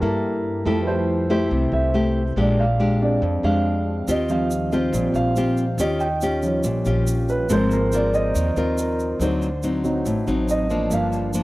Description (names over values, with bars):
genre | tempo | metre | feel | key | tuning
bossa nova | 140 BPM | 4/4 | straight | unclear | A4 = 439 Hz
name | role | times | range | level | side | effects
nylon-string guitar | accompaniment | 0.0-11.4 s | F2 to Bb4 | -23 LUFS | left 1 dB | none
warm concert grand piano | accompaniment | 0.0-11.4 s | F3 to G5 | -23 LUFS | right 2 dB | none
upright bass | bass | 0.0-11.4 s | G1 to G2 | -25 LUFS | equal | none
egg shaker | percussion | 4.1-11.4 s | none | -38 LUFS | right 4 dB | none
room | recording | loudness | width
light reverb | home recording on cassette, faint mains hum | -19 LUFS | side -18 dB against mid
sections
0.0-11.4 A section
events
grand piano solo 0.0-11.4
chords
0.0 C13 (rootless); 0.7 Fmaj9; 2.4 Bb13; 4.1 Eb69; 5.8 Eb9; 7.5 Ab69; 9.2 D7b9; 10.9 Gm7